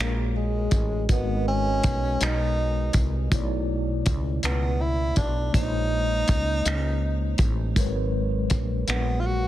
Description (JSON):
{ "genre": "slow six-eight R&B", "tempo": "54 BPM (dotted quarters)", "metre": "6/8", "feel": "straight", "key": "unclear", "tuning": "A4 = 439 Hz", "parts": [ { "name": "breathy tenor saxophone", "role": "melody", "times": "0.0-9.5 s", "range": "G#3 to F#4", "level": "-29 LUFS", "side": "equal", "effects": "ping-pong delay" }, { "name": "mellow tine electric piano", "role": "accompaniment", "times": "0.0-9.5 s", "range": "B2 to D#5", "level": "-31 LUFS", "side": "left 1 dB", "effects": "medium stereo tremolo" }, { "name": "woody fretless electric bass", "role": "bass", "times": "0.0-9.5 s", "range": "G#1 to C#2", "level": "-26 LUFS", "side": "equal", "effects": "none" }, { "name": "cloth-damped thuddy drum kit", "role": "drums", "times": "0.0-9.1 s", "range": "finger snaps, hi-hat, kick drum", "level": "-24 LUFS", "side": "equal", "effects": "soft clipping on snare" } ], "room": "small room ambience", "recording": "dense, heavily limited modern master", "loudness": "-22 LUFS", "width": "side -14 dB against mid", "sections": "0.0-9.5 A section", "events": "none", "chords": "0.0 G#m11; 3.3 Bm11; 5.5 A#m11; 7.8 G#m11" }